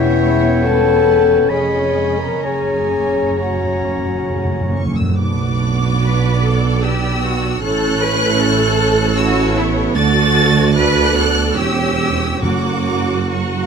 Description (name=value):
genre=classical, slow romantic movement for symphony orchestra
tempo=62-78 BPM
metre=3/4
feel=rubato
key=B minor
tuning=A4 = 438 Hz
part: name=warm symphonic violin section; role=melody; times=0.0-13.7 s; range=E5 to A6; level=-22 LUFS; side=equal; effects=none
part: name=clear clarinet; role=second line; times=0.0-4.8 s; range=C#5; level=-27 LUFS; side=left 2 dB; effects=none
part: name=clear oboe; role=second line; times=0.0-4.8 s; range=G5 to B5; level=-27 LUFS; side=right 2 dB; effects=none
part: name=mellow hollow silver concert flute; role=second line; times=0.0-4.7 s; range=E5 to A#5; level=-29 LUFS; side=equal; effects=none
part: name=warm symphonic violin section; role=second line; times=0.0-13.7 s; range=F#4 to F#5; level=-25 LUFS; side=left 2 dB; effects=none
part: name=mellow bassoon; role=accompaniment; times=0.0-4.8 s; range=B3 to C#4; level=-25 LUFS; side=right 3 dB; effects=none
part: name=warm symphonic viola section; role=accompaniment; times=0.0-13.7 s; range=C#3 to G4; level=-23 LUFS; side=right 3 dB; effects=none
part: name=mellow French horn section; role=sustained chords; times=0.0-4.8 s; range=E4 to A#4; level=-16 LUFS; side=left 6 dB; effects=none
part: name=dark chamber double bass section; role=bass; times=0.0-13.7 s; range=E1 to F#2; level=-20 LUFS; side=right 4 dB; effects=none
part: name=warm symphonic cello section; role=bass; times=0.0-13.7 s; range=E2 to B4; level=-22 LUFS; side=right 1 dB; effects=none
part: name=timpani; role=percussion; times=2.4-5.2, 12.4-13.7 s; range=F#2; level=-22 LUFS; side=equal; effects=none
part: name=mellow tuba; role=bass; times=5.2-13.7 s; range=E1 to D2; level=-21 LUFS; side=right 6 dB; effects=none
room=moderate recital hall reverb, RT60 1.7 s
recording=close, detailed microphones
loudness=-13 LUFS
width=side -6 dB against mid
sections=0.0-5.2 A section; 5.2-13.7 B section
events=timpani fill 2.4-5.2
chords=0.0 C#m7b5/E; 1.5 C#7/E#; 2.4 F#; 5.2 Bm; 7.6 A; 10.0 D; 11.6 C#dim/E; 12.4 F#